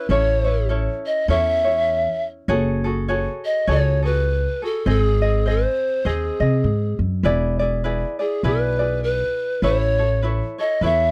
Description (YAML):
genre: Hawaiian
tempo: 101 BPM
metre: 4/4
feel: swing 59% on 8ths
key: unclear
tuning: A4 = 440 Hz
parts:
  - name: breathy mellow polished pan flute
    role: melody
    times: 0.0-11.1 s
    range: G#4 to E5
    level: -23 LUFS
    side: equal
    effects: none
  - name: tenor ukulele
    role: accompaniment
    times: 0.0-11.1 s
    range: B#3 to D#5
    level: -27 LUFS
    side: equal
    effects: none
  - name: upright bass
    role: bass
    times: 0.1-11.1 s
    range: E1 to B#2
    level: -23 LUFS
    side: equal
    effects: none
room: little or no reverb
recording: dry, close 1970s-style studio recording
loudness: -21 LUFS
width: mono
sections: 0.0-11.1 A section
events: none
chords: 0.1 A; 2.5 F#madd9; 4.9 G#; 7.2 E7; 9.6 Aadd9